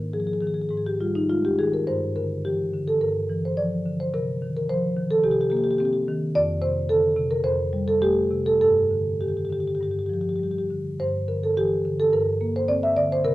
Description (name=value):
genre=classical, contemporary piece for solo marimba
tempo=100-110 BPM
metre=4/4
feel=rubato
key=G minor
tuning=A4 = 440 Hz
part: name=marimba with medium mallets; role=solo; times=0.0-13.3 s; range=F2 to E5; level=-21 LUFS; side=equal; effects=none
room=light reverb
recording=close, detailed microphones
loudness=-21 LUFS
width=side -17 dB against mid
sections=0.0-11.0 A section; 11.0-13.3 A section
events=none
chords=0.0 Ab5; 1.9 G5; 4.1 Cm7; 6.3 Fadd9; 8.6 Gsus2; 11.0 Gm6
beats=0.13 0.71 1.29 | 1.88 2.45 3.02 3.58 | 4.14 4.69 5.24 5.80 | 6.34 6.89 7.44 8.02 | 8.61 9.21 9.80 10.39 | 10.98 11.56 12.13 12.69 | 13.24